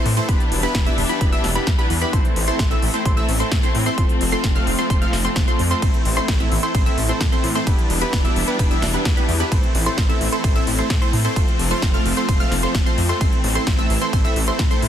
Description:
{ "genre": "EDM, festival progressive house", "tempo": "130 BPM", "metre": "4/4", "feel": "straight", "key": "A minor", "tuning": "A4 = 438 Hz", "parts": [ { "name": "rich studio string section", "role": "sustained chords", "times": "0.0-14.9 s", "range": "E3 to D4", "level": "-27 LUFS", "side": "left 2 dB", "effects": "sidechain pumping" }, { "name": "wide unison pluck", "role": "arpeggios", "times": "0.0-14.8 s", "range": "B5 to F6", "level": "-28 LUFS", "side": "equal", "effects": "vintage 12-bit sampler grit, sidechain pumping, ping-pong delay" }, { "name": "supersaw stab", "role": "riff", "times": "0.0-14.8 s", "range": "A3 to F5", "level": "-24 LUFS", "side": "equal", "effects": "sidechain pumping, ping-pong delay" }, { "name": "wide detuned saw bass", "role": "bass", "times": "0.1-14.9 s", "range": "E1 to A2", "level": "-24 LUFS", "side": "equal", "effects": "chorus, tube saturation, sidechain pumping" }, { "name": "big-room dance drum kit", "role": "drums", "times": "0.1-14.9 s", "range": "hi-hat, ride cymbal, snare drum", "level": "-26 LUFS", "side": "equal", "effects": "none" }, { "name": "electronic kick drum", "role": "drums", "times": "0.3-14.7 s", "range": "none", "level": "-19 LUFS", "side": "equal", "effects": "none" } ], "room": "light reverb, digital ambience", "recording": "dense, heavily limited modern master", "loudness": "-16 LUFS", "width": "side -10 dB against mid", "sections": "0.0-14.9 A section", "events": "none", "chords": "0.3 Em7; 2.1 Am; 4.0 F; 5.8 Am; 7.7 Em7; 9.5 Am; 11.4 F; 13.2 Am" }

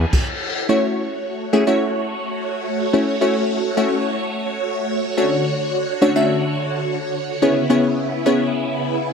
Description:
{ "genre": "pop", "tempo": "107 BPM", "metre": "4/4", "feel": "straight", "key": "A major", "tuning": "A4 = 439 Hz", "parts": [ { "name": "phased string machine", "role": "sustained chords", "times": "0.0-9.1 s", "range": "C#3 to C#5", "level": "-22 LUFS", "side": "equal", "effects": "ensemble chorus, phaser, sidechain pumping" }, { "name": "reverse cymbal", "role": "sound effects", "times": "0.0-0.7 s", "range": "none", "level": "-27 LUFS", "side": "left 3 dB", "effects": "none" }, { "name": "wavetable chord stab", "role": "accompaniment", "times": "0.7-9.1 s", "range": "A3 to E5", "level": "-18 LUFS", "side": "left 1 dB", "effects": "sidechain pumping" } ], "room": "light reverb, studio reverb", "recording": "none", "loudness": "-17 LUFS", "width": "side -6 dB against mid", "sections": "0.7-9.1 A section", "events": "reverse cymbal 0.0-0.7; stop 0.1-0.7", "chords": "0.0 E7; 0.7 A6; 5.2 Dmaj7; 7.4 C#m7" }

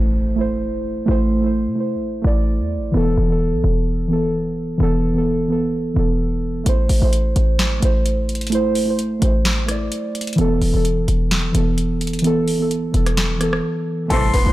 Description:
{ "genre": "hip hop, trap", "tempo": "129 BPM", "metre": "4/4", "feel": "half-time", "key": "unclear", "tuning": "A4 = 439 Hz", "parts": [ { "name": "muted felt-like synth keys", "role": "accompaniment", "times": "0.0-14.5 s", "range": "E3 to D5", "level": "-20 LUFS", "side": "right 1 dB", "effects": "chorus" }, { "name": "short 808-style bass", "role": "bass", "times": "0.0-14.5 s", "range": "E1 to C3", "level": "-20 LUFS", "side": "equal", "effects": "none" }, { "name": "impact", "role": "sound effects", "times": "0.0-1.1, 14.1-14.5 s", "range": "none", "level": "-32 LUFS", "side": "left 1 dB", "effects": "none" }, { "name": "booming analog drum machine", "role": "drums", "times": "6.7-14.5 s", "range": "crash cymbal, hi-hat, rim click, snare drum", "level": "-24 LUFS", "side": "equal", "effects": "none" }, { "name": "bright concert grand piano", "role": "melody", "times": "14.1-14.5 s", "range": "A3 to B4", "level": "-22 LUFS", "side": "left 1 dB", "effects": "none" }, { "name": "jazz flute", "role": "second line", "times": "14.1-14.5 s", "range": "C6", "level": "-22 LUFS", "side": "left 3 dB", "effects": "none" }, { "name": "glassy FM pad", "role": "sustained chords", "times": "14.1-14.5 s", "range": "A3 to E5", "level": "-49 LUFS", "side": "left 1 dB", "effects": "none" }, { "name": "warm studio string section", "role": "stabs", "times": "14.1-14.4 s", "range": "C2 to E3", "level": "-25 LUFS", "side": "left 3 dB", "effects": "none" } ], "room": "little or no reverb", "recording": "dark, warm production", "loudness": "-16 LUFS", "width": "side -16 dB against mid", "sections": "0.0-14.1 A section", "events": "impact 0.0-1.1, 14.1-14.5; break 13.6-14.1", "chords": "0.0 Am; 2.9 Esus4; 6.7 Am; 10.4 Esus4" }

